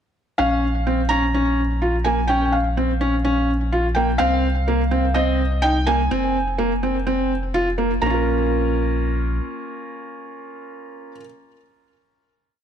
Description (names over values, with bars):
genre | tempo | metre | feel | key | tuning
piano and strings electronica | 126 BPM | 4/4 | straight | Bb dorian | A4 = 440 Hz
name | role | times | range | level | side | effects
felt-muted upright piano | melody | 0.4-11.1 s | Eb5 to Bb5 | -24 LUFS | right 1 dB | ping-pong delay
felt-muted upright piano | riff | 0.4-11.2 s | Bb3 to Bb4 | -22 LUFS | equal | ping-pong delay
warm sub bass | bass | 0.4-9.4 s | F1 to C2 | -23 LUFS | equal | none
room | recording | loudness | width
moderate recital hall reverb, RT60 1.3 s, small room ambience | none | -18 LUFS | side -8 dB against mid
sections
0.4-8.0 drop; 8.0-11.8 final chord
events
drop 0.4-8.0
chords
0.4 Bbm; 4.2 Cm; 6.1 Fm; 8.0 Bbm